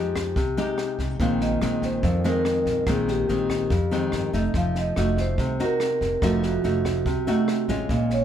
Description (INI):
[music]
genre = bossa nova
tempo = 143 BPM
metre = 4/4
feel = straight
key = F minor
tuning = A4 = 440 Hz
[part]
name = vibraphone with medium mallets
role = melody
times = 0.0-8.2 s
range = Gb4 to F5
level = -27 LUFS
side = right 1 dB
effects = none
[part]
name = nylon-string guitar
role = accompaniment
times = 0.0-8.2 s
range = F2 to G4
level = -24 LUFS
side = left 1 dB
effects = none
[part]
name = upright bass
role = bass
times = 0.0-8.2 s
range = F1 to F2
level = -28 LUFS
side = equal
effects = none
[part]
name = compact cocktail drum kit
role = drums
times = 0.2-8.2 s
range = kick drum, rim click, snare drum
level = -31 LUFS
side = equal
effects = none
[sound]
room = light reverb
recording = band playing live in one room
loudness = -21 LUFS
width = side -9 dB against mid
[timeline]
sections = 0.0-8.2 A section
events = none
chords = 0.0 Fm9; 1.2 Bb9sus4; 4.5 F7b9